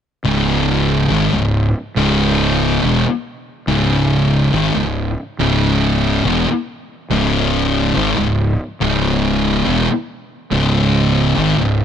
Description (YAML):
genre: metal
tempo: 70 BPM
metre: 4/4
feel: straight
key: C# minor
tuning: A4 = 440 Hz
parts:
  - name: thick fuzz guitar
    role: riff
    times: 0.2-11.8 s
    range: C#2 to D#3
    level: -17 LUFS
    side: left 7 dB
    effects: distortion
  - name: fuzz fingered electric bass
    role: bass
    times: 0.2-11.8 s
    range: C#1 to G#1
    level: -21 LUFS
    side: right 1 dB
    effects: overdrive
  - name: thick fuzz guitar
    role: riff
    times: 0.3-11.8 s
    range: C#2 to D#3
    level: -18 LUFS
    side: right 8 dB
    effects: distortion
room: little or no reverb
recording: none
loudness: -14 LUFS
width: side -8 dB against mid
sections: 0.3-11.8 A section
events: none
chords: 0.3 C#m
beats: | 0.25 1.11 1.97 2.83 | 3.68 4.54 5.40 6.25 | 7.11 7.96 8.81 9.66 | 10.52 11.37